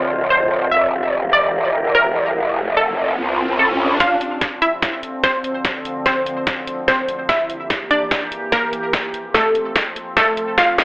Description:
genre	heavy wobble dubstep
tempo	146 BPM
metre	4/4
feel	swing 54% on 16ths, half-time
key	D minor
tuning	A4 = 444 Hz
part	wide unison pluck	melody	0.0-10.8 s	A3 to F5	-18 LUFS	equal	phaser, vintage 12-bit sampler grit, digital delay
part	evolving wavetable pad	sustained chords	0.0-10.8 s	D2 to Bb4	-26 LUFS	equal	chorus, built-in reverb, sidechain pumping
part	growl bass	bass	0.0-4.0 s	D1 to C2	-18 LUFS	equal	chorus, overdrive
part	riser	sound effects	1.7-4.0, 10.6-10.8 s	none	-26 LUFS	equal	none
part	dubstep drum kit	drums	4.0-10.8 s	hi-hat, snare drum	-20 LUFS	equal	high-pass filter on snare, low-pass filter on snare, high-pass filter on hats, low-pass filter on hats
part	electronic kick drum	drums	4.0-10.7 s	none	-23 LUFS	equal	none
room	moderate plate reverb, RT60 1.2 s, digital ambience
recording	high-pass filter, telephone sound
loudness	-15 LUFS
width	side -22 dB against mid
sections	0.0-4.0 A section; 4.0-10.8 B section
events	riser 1.7-4.0; build-up 4.0-10.8; drum fill 4.0-10.8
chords	0.0 Dm7; 0.7 Edim; 2.4 F; 3.2 Csus4; 4.0 Dm7; 7.3 Edim; 8.9 F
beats	0.30 | 0.71 1.13 1.54 1.95 | 2.36 2.77 3.18 3.59 | 4.00 4.41 4.83 5.24 | 5.65 6.06 6.47 6.88 | 7.29 7.70 8.11 8.52 | 8.93 9.35 9.76 10.17 | 10.58

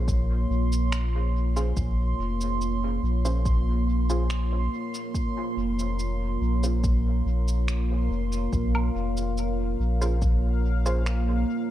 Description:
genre	ambient dub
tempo	71 BPM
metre	4/4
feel	straight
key	Bb minor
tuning	A4 = 441 Hz
part	deep dark ambient pad	sustained chords	0.0-11.7 s	Bb3 to Db5	-30 LUFS	equal	chorus, built-in reverb
part	filtered dub chord stab	stabs	0.0-11.0 s	Db4 to C5	-36 LUFS	right 2 dB	lush chorus, dub echo
part	warm sub bass	bass	0.0-11.4 s	F1 to Bb1	-24 LUFS	equal	none
part	bubbling stepped-filter texture	texture	0.0-11.7 s	F5 to C6	-38 LUFS	right 4 dB	chorus, built-in reverb
part	electronic kick drum	drums	0.1-10.4 s	none	-28 LUFS	equal	small room ambience
part	electronic shaker, finger snaps and woodblock	drums	0.1-11.2 s	none	-36 LUFS	right 1 dB	small room ambience, dub echo
room	digital ambience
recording	none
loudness	-23 LUFS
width	side -13 dB against mid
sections	0.0-11.7 A section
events	none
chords	0.0 Bbm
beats	0.08 0.92 | 1.77 2.61 3.46 4.30 | 5.15 5.99 6.84 7.68 | 8.53 9.37 10.22 11.06

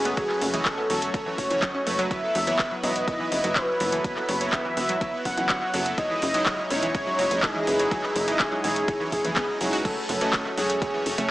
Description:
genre	progressive house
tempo	124 BPM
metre	4/4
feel	straight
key	F# dorian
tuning	A4 = 440 Hz
part	wide unison lead	melody	0.0-11.2 s	G#4 to F#5	-27 LUFS	equal	dub echo
part	lush unison pad	sustained chords	0.0-11.3 s	F#3 to E4	-33 LUFS	equal	chorus, phaser, sidechain pumping
part	soft supersaw	stabs	0.0-11.3 s	F#3 to D#5	-30 LUFS	right 1 dB	sidechain pumping, dub echo
part	tight sequencer bass	bass	0.0-11.3 s	E1 to F#1	-33 LUFS	equal	sidechain pumping
part	wide unison pluck	arpeggios	0.1-11.2 s	F#2 to F#4	-32 LUFS	equal	sidechain pumping, dub echo
part	deep house drum kit	drums	0.1-11.3 s	crash cymbal, handclaps, hi-hat	-28 LUFS	equal	overdrive, sidechain pumping on hats, sidechain pumping on cymbals
part	electronic kick drum	drums	0.2-10.9 s	none	-32 LUFS	equal	overdrive
room	light reverb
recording	small speaker sound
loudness	-22 LUFS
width	side -16 dB against mid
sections	0.0-11.3 A section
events	none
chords	0.0 F#m; 2.1 Bsus4; 6.0 C#madd9; 9.8 F#m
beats	| 0.17 0.66 1.14 1.62 | 2.11 2.59 3.08 3.56 | 4.04 4.53 5.01 5.50 | 5.98 6.46 6.95 7.43 | 7.92 8.40 8.88 9.37 | 9.85 10.33 10.82 11.30

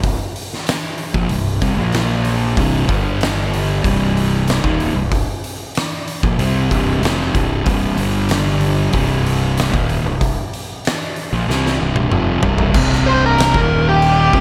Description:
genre	stoner and doom metal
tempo	94 BPM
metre	4/4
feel	straight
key	C minor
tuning	A4 = 440 Hz
part	fuzz guitar	riff	0.0-14.4 s	C2 to C4	-20 LUFS	equal	distortion
part	fuzz fingered electric bass	bass	0.0-14.4 s	C1 to C2	-23 LUFS	equal	overdrive
part	oversized low-tuned drum kit	drums	0.0-14.4 s	crash cymbal, hi-hat, kick drum, snare drum, toms	-22 LUFS	equal	none
part	fuzz lead guitar	melody	13.1-14.4 s	G4 to C5	-17 LUFS	equal	wah, distortion
room	light reverb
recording	none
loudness	-17 LUFS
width	mono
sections	0.0-12.8 A section; 12.8-14.4 B section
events	drum fill 11.5-12.8; lead electric guitar solo 12.8-14.4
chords	0.0 C5; 1.8 Bb5; 2.6 C5; 2.9 G5; 3.8 Cm; 8.0 G5; 8.9 Cm; 12.8 C5; 13.5 Eb5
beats	| 0.03 0.67 1.30 1.94 | 2.58 3.21 3.85 4.48 | 5.12 5.75 6.39 7.03 | 7.66 8.30 8.94 9.57 | 10.21 10.84 11.48 12.12 | 12.75 13.39 14.02

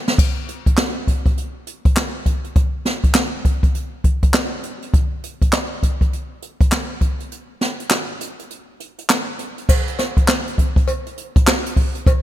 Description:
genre	R&B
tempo	101 BPM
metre	4/4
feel	swing 62% on 16ths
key	none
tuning	none
part	jazz brush drum kit	drums	0.1-12.2 s	crash cymbal, handclaps, hi-hat, kick drum, snare drum	-16 LUFS	equal	none
part	cowbell	percussion	9.7-12.2 s	none	-26 LUFS	left 2 dB	none
room	light reverb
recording	none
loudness	-17 LUFS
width	side -13 dB against mid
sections	0.0-9.7 A section; 9.7-12.2 B section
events	drum fill 0.0; break 7.3-9.7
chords	none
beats	| 0.18 0.78 1.37 1.96 | 2.56 3.15 3.75 4.34 | 4.93 5.53 6.12 6.72 | 7.31 7.90 8.50 9.09 | 9.69 10.28 10.88 11.47 | 12.06

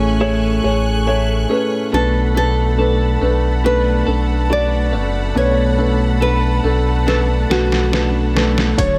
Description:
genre	pop ballad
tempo	70 BPM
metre	4/4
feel	straight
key	unclear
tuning	A4 = 440 Hz
part	felt-muted upright piano	accompaniment	0.0-9.0 s	A2 to E5	-22 LUFS	equal	none
part	warm studio string section	sustained chords	0.0-9.0 s	A3 to F#6	-28 LUFS	equal	none
part	twelve-string electric guitar	arpeggios	0.0-9.0 s	B2 to A4	-28 LUFS	equal	none
part	sub bass with octave	bass	0.0-9.0 s	D1 to B1	-20 LUFS	equal	none
part	nylon-string guitar	melody	1.9-9.0 s	F#4 to D5	-24 LUFS	equal	digital delay
part	trip hop sampler-style drum kit	drums	7.1-9.0 s	hi-hat, kick drum, snare drum	-23 LUFS	equal	none
room	light reverb, small room ambience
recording	none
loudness	-16 LUFS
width	mono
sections	0.0-9.0 A section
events	drum fill 7.1-8.8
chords	0.0 Amaj7; 1.9 Bm7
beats	0.21 1.07 | 1.93 2.78 3.64 4.50 | 5.35 6.21 7.07 7.93 | 8.78

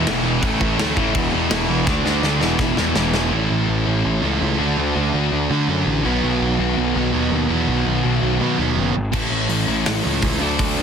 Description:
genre	punk rock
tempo	165 BPM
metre	4/4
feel	straight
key	unclear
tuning	A4 = 436 Hz
part	high-gain distorted guitar	riff	0.0-3.3 s	E2 to D4	-24 LUFS	left 1 dB	distortion
part	sludgy distorted guitar	riff	0.0-10.8 s	A2 to F#4	-23 LUFS	left 12 dB	overdrive
part	sludgy distorted guitar	riff	0.0-10.8 s	E2 to D4	-22 LUFS	right 10 dB	overdrive
part	fuzz picked electric bass	bass	0.0-10.8 s	E1 to D3	-22 LUFS	equal	overdrive
part	big rock drum kit	drums	0.1-3.2, 9.1-10.7 s	crash cymbal, hi-hat, kick drum, snare drum	-23 LUFS	equal	soft clipping on kick, soft clipping on snare
room	little or no reverb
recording	dense, heavily limited modern master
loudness	-17 LUFS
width	side -7 dB against mid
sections	0.0-3.3 A section; 3.3-10.8 B section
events	drum fill 1.9-3.3; half time 3.3-10.8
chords	0.4 A; 1.2 E; 1.9 D; 2.4 E; 3.3 A; 4.6 D; 6.0 B; 9.1 A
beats	0.07 | 0.43 0.79 1.15 1.51 | 1.87 2.23 2.60 2.96 | 3.32 3.68 4.04 4.41 | 4.77 5.13 5.49 5.86 | 6.22 6.58 6.95 7.31 | 7.68 8.04 8.41 8.77 | 9.14 9.50 9.87 10.23 | 10.60

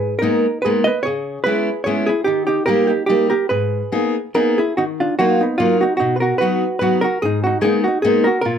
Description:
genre	musette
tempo	146 BPM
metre	3/4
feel	swing 53% on 8ths, rubato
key	G# harmonic minor, Eb minor from 4.8 s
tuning	A4 = 442 Hz
part	hollow-body jazz guitar	melody	0.0-8.6 s	Bb3 to D#5	-18 LUFS	right 2 dB	none
part	fingerpicked steel-string acoustic guitar	accompaniment	0.0-8.6 s	G#2 to G#4	-19 LUFS	left 1 dB	none
room	moderate small room reverb, RT60 0.5 s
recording	none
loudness	-15 LUFS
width	side -8 dB against mid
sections	0.0-4.8 A section; 4.8-8.6 B section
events	none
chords	0.0 G#madd9; 1.1 C#m7; 2.3 D#; 3.5 G#madd9; 4.8 Ebmadd9; 6.0 B; 7.2 Abmadd9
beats	0.23 0.65 | 1.06 1.47 1.88 | 2.28 2.69 3.10 | 3.51 3.92 4.35 | 4.77 5.19 5.60 | 6.01 6.42 6.82 | 7.22 7.63 8.04 | 8.45

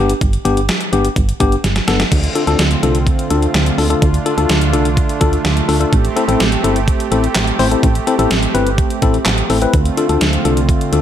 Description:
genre	synth-pop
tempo	126 BPM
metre	4/4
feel	straight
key	unclear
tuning	A4 = 439 Hz
part	tine electric piano	accompaniment	0.0-11.0 s	B3 to C5	-18 LUFS	left 5 dB	overdrive
part	solid FM bass	bass	0.0-11.0 s	G1 to D2	-17 LUFS	right 1 dB	none
part	clean 12-bit digital drum machine	drums	0.1-11.0 s	crash cymbal, handclaps, hi-hat, kick drum, snare drum	-17 LUFS	right 1 dB	overdrive, gated reverb
part	brassy analog pad	sustained chords	2.1-11.0 s	D3 to G4	-20 LUFS	right 4 dB	chorus
room	light reverb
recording	none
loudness	-12 LUFS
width	side -10 dB against mid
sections	0.0-2.1 A section; 2.1-11.0 B section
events	drum fill 1.6-2.1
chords	0.0 G; 2.1 Dm7; 5.9 Am7; 9.7 Dm7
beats	| 0.21 0.69 1.17 1.64 | 2.12 2.59 3.07 3.55 | 4.02 4.50 4.97 5.45 | 5.93 6.40 6.88 7.36 | 7.83 8.31 8.78 9.26 | 9.74 10.21 10.69

